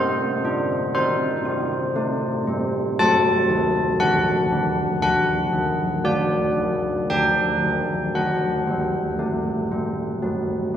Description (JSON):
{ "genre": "classical, tune for church bells", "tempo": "58 BPM", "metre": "4/4", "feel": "straight", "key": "unclear", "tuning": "A4 = 440 Hz", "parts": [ { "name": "old church bells", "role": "solo", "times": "0.0-10.8 s", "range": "D3 to A5", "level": "-19 LUFS", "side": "equal", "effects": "none" } ], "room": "wet cathedral reverb, RT60 4.5 s", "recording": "none", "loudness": "-19 LUFS", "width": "side -9 dB against mid", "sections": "0.0-10.8 A section", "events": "none", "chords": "0.0 Am7b5; 3.0 D" }